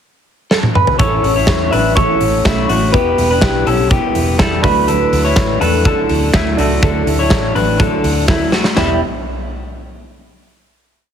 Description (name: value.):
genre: jangly indie pop.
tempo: 124 BPM.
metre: 4/4.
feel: straight.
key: E dorian.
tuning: A4 = 439 Hz.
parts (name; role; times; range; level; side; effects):
electric guitar through a small old amp; melody; 0.5-9.0 s; E4 to E5; -18 LUFS; equal; phaser.
big rock drum kit; drums; 0.5-8.9 s; crash cymbal, hi-hat, kick drum, snare drum, toms; -16 LUFS; equal; none.
picked steel-string acoustic guitar; accompaniment; 1.0-9.0 s; A2 to E4; -21 LUFS; right 7 dB; none.
warm upright piano; accompaniment; 1.0-9.0 s; B3 to A4; -26 LUFS; right 7 dB; none.
electric guitar through a small old amp; arpeggios; 1.0-9.0 s; G3 to C#5; -18 LUFS; left 6 dB; tape echo.
vintage muted fingered electric bass; bass; 1.0-9.0 s; E1 to E2; -19 LUFS; equal; none.
room: light reverb, small room ambience.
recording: heavily compressed radio sound, multiband compression.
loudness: -11 LUFS.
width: side -8 dB against mid.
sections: 0.0-1.0 pickup bar; 1.0-8.8 pre-chorus; 8.8-10.7 final chord.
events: drum fill 0.5-1.0, 8.3-8.8.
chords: 0.0 N.C.; 1.0 A; 2.9 Em; 4.6 Dadd9; 8.8 Em.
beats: 0.02 0.51 | 1.00 1.48 1.97 2.46 | 2.94 3.43 3.91 4.40 | 4.88 5.37 5.86 6.34 | 6.83 7.31 7.80 8.29 | 8.77.